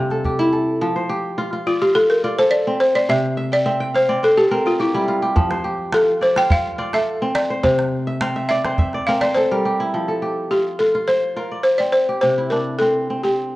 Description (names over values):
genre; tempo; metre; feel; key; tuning
west african traditional, West African string and xylophone music; 105 BPM; 4/4; straight; F major; A4 = 440 Hz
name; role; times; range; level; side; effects
balafon; melody; 0.0-13.6 s; E4 to G5; -17 LUFS; equal; none
kora; arpeggios; 0.0-13.6 s; C3 to G5; -21 LUFS; equal; none
calabash; percussion; 0.1-0.4, 5.4-9.4 s; none; -22 LUFS; right 1 dB; none
room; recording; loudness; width
moderate recital hall reverb, RT60 1.7 s; worn, warbling old tape, cassette tape, warbly pitch drift; -16 LUFS; side -18 dB against mid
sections
0.8-9.9 A section; 9.9-13.6 B section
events
balafon solo 0.8-9.9; kora fill 3.4-5.4, 8.1-9.9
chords
0.0 C; 0.8 F; 3.1 C; 5.4 F; 7.6 C; 9.9 F; 12.2 C